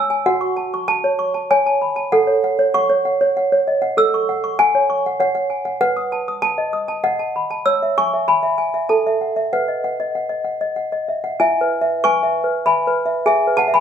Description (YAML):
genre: classical, lullaby for toy piano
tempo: 97 BPM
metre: 3/4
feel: straight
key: E major from 4.0 s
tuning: A4 = 440 Hz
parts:
  - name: toy piano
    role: solo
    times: 0.0-13.8 s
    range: E4 to E6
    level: -16 LUFS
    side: equal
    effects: none
room: little or no reverb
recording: close, detailed microphones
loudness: -16 LUFS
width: side -8 dB against mid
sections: 0.0-11.4 A section; 11.4-13.8 B section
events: none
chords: 0.3 F#m; 2.1 F#5; 4.0 F#7(no3); 5.8 B7; 7.7 C#m; 8.9 F#m7/A; 9.5 B (rootless); 11.4 E; 13.3 E/G#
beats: | 0.26 0.87 1.49 | 2.11 2.73 3.34 | 3.96 4.57 5.19 | 5.81 6.43 7.04 | 7.66 8.28 8.90 | 9.53 10.15 10.78 | 11.40 12.03 12.64 | 13.26